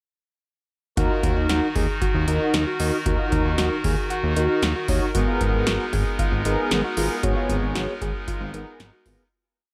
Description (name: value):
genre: synth-pop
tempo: 115 BPM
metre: 4/4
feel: straight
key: Eb minor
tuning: A4 = 438 Hz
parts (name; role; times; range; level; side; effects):
- mellow synth brass; accompaniment; 1.0-9.2 s; Cb4 to Db5; -28 LUFS; equal; chorus
- pipe organ, clarinet reed; sustained chords; 1.0-9.3 s; Eb3 to Bb4; -32 LUFS; equal; none
- warbly dusty pluck; arpeggios; 1.0-9.2 s; Eb4 to Ab4; -33 LUFS; equal; chorus, tape echo
- fat analog bass; bass; 1.0-9.2 s; Ab1 to Eb2; -28 LUFS; equal; none
- electro analog drum machine; drums; 1.0-9.2 s; hi-hat, kick drum, snare drum; -28 LUFS; equal; none
room: light reverb, digital ambience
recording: none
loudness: -23 LUFS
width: mono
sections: 1.0-9.3 chorus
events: fade-out 7.2-9.3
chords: 1.0 Ebm; 5.1 Abmadd9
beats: | 0.97 1.49 2.02 2.54 | 3.06 3.58 4.10 4.62 | 5.15 5.67 6.19 6.71 | 7.23 7.75 8.28 8.80